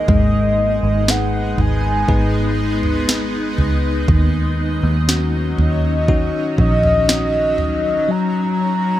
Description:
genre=pop ballad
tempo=60 BPM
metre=4/4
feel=straight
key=G# minor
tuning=A4 = 440 Hz
part: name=mellow horn-like synth lead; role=melody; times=0.0-9.0 s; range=D#5 to A#5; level=-20 LUFS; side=equal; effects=chorus
part: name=bell-like tine electric piano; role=accompaniment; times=0.0-9.0 s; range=D#3 to B4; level=-22 LUFS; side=left 4 dB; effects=none
part: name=shimmering ambient pad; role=sustained chords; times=0.0-9.0 s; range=F#3 to D#4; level=-24 LUFS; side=right 1 dB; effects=chorus, built-in reverb
part: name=vintage muted fingered electric bass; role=bass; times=0.0-8.0 s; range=G#1 to D#2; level=-19 LUFS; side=equal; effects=none
part: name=smooth R&B drum kit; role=drums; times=0.1-7.8 s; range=kick drum, snare drum, toms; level=-18 LUFS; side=right 1 dB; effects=overdrive
room=little or no reverb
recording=none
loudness=-15 LUFS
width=side -13 dB against mid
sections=0.0-9.0 A section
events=none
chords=0.1 G#m; 4.1 D#m7; 8.1 F#

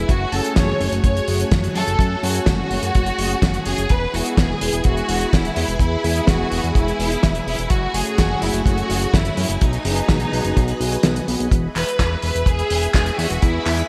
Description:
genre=italo disco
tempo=126 BPM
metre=4/4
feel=straight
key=E major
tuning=A4 = 440 Hz
part: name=warm studio violin section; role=melody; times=0.0-13.9 s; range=D#4 to C#5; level=-27 LUFS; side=equal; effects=digital delay
part: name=string machine, full ensemble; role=sustained chords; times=0.0-13.9 s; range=A3 to B5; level=-30 LUFS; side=equal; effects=ensemble chorus
part: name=fat analog bass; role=bass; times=0.0-13.8 s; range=E1 to F#2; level=-25 LUFS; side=equal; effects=none
part: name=damped 70s drum kit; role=drums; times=0.1-13.9 s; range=handclaps, hi-hat, snare drum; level=-26 LUFS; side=equal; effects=high-pass filter on hats, small room ambience, high-pass filter on snare, high-pass filter on room, gated reverb
part: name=kick drum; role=drums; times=0.1-13.5 s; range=none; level=-20 LUFS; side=equal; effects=small room ambience
part: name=mellow synth brass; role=stabs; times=0.3-13.9 s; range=G#3 to G#4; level=-30 LUFS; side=equal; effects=chorus
part: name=riser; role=sound effects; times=11.5-13.9 s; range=none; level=barely audible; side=none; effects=none
room=moderate lush hall reverb, RT60 1.9 s, small room ambience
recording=bright 1980s-style digital production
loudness=-19 LUFS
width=mono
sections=0.0-11.5 A section; 11.5-13.9 B section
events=kick drops out 11.0-11.5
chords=0.1 F#madd9; 3.9 E; 7.7 F#madd9; 9.6 B6; 11.5 E

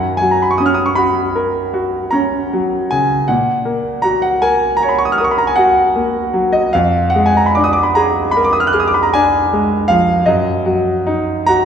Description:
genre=classical, romantic nocturne for solo piano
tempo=48-56 BPM (dotted quarters)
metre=9/8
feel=rubato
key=unclear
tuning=A4 = 441 Hz
part: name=clear concert grand piano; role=solo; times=0.0-11.7 s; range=F2 to Gb6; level=-12 LUFS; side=equal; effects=none
room=wet scoring stage reverb, RT60 2.0 s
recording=recorded in a church or concert hall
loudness=-12 LUFS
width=side -8 dB against mid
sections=0.0-11.7 A section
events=none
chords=0.0 Gb; 3.3 Gb/Bb; 6.7 Bb7/F; 10.3 Ebm/Gb

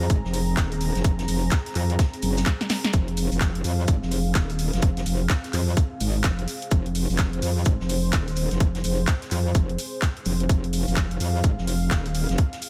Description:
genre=bass house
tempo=127 BPM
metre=4/4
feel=swing 62% on 16ths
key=F minor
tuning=A4 = 440 Hz
part: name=dark analog pad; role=sustained chords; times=0.0-12.7 s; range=C4 to Bb5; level=-36 LUFS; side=equal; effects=chorus, vintage 12-bit sampler grit, sidechain pumping
part: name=metallic wobble bass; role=bass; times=0.0-12.4 s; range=Eb1 to F2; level=-26 LUFS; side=equal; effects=chorus, tube saturation, sidechain pumping
part: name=electronic kick drum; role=drums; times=0.1-12.5 s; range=none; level=-24 LUFS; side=equal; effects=small room ambience
part: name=house drum kit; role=drums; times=0.1-12.7 s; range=handclaps, hi-hat, snare drum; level=-33 LUFS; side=equal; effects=small room ambience
part: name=vintage drum kit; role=drums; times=0.1-12.7 s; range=hi-hat, shaker, snare drum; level=-40 LUFS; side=equal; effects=sidechain pumping on hats, high-pass filter on hats, small room ambience, high-pass filter on snare, sidechain pumping on perc, high-pass filter on perc, high-pass filter on room
room=little or no reverb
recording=none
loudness=-24 LUFS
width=mono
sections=0.0-12.7 A section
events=drum fill 2.5-2.9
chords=0.0 Fm

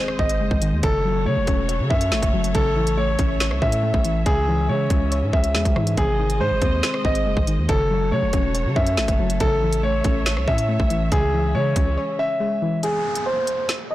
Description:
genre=hip hop, drill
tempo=140 BPM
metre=4/4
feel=half-time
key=C# harmonic minor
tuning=A4 = 440 Hz
part: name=soft round pluck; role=accompaniment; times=0.0-12.8 s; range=B#2 to C#5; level=-25 LUFS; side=left 2 dB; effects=chorus
part: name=rich studio string section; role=sustained chords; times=0.0-12.8 s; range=C#3 to E5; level=-32 LUFS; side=right 1 dB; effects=none
part: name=impact and downlifter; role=sound effects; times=0.0-0.8, 12.8-13.9 s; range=none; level=-34 LUFS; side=equal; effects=none
part: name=drill drum kit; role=drums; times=0.1-13.8 s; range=hi-hat, kick drum, rim click, snare drum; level=-22 LUFS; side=equal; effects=none
part: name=warm concert grand piano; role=melody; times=0.2-13.9 s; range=G#4 to E5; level=-24 LUFS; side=equal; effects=low-pass filter, tape echo
part: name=long sustained 808-style bass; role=bass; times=0.2-12.0 s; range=E1 to C#3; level=-23 LUFS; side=equal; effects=none
room=light reverb, digital ambience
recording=blown-out, overdriven recording, overdrive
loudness=-18 LUFS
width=side -15 dB against mid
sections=0.0-12.8 A section; 12.8-13.9 B section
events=impact 0.0-0.8; break 12.0-12.8; kick muted 12.8-13.9; filter sweep on grand piano 12.8-13.9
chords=0.0 G#; 0.8 F#m; 2.5 A; 4.3 C#m; 6.0 G#; 7.7 F#m; 9.4 A; 11.1 C#m; 12.8 N.C.

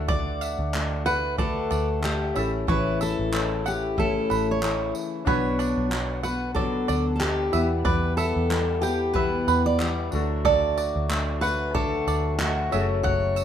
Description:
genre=acoustic pop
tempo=93 BPM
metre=4/4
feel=swing 55% on 16ths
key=unclear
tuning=A4 = 441 Hz
part: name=felt-muted upright piano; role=accompaniment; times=0.0-13.4 s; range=C#4 to F#5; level=-37 LUFS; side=left 2 dB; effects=none
part: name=fingerpicked steel-string acoustic guitar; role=accompaniment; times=0.0-13.4 s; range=E2 to G4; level=-29 LUFS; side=left 4 dB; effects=none
part: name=pedal harmonium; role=sustained chords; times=0.0-13.4 s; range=C#3 to F#5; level=-36 LUFS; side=left 2 dB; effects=none
part: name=vintage muted fingered electric bass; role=bass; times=0.0-13.4 s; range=F#1 to E2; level=-29 LUFS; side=equal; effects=none
part: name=fingerpicked steel-string acoustic guitar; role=melody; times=0.1-13.4 s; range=F#4 to D5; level=-27 LUFS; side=right 1 dB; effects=none
part: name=bluegrass banjo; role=arpeggios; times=0.1-13.4 s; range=D4 to G5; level=-30 LUFS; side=right 5 dB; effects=none
part: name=jazz brush drum kit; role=drums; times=0.1-13.4 s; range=handclaps, kick drum, tambourine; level=-30 LUFS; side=right 1 dB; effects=none
room=moderate studio reverb, RT60 0.8 s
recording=minimal, uncompressed stereo recording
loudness=-22 LUFS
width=side -9 dB against mid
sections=0.0-13.4 A section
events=none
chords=0.0 D; 2.4 A; 5.3 Bm; 7.5 Em; 10.1 D; 12.7 F#m

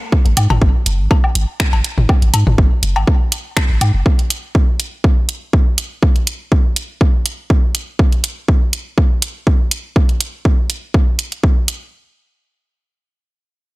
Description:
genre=minimal techno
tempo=122 BPM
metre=4/4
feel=swing 54% on 16ths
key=unclear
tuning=A4 = 440 Hz
part: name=electronic kick drum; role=drums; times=0.1-11.5 s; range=none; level=-13 LUFS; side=equal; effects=overdrive
part: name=punchy sub bass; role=bass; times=0.3-4.0 s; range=F#1 to G#2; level=-15 LUFS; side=equal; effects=sidechain pumping
part: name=house drum kit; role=drums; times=0.3-11.8 s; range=finger snaps, hi-hat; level=-20 LUFS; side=right 2 dB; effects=overdrive
part: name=electronic woodblock, toms and cowbell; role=percussion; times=0.4-3.9 s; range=none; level=-21 LUFS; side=left 2 dB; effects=tape echo
room=little or no reverb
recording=none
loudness=-13 LUFS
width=side -21 dB against mid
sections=0.0-11.9 A section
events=none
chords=none

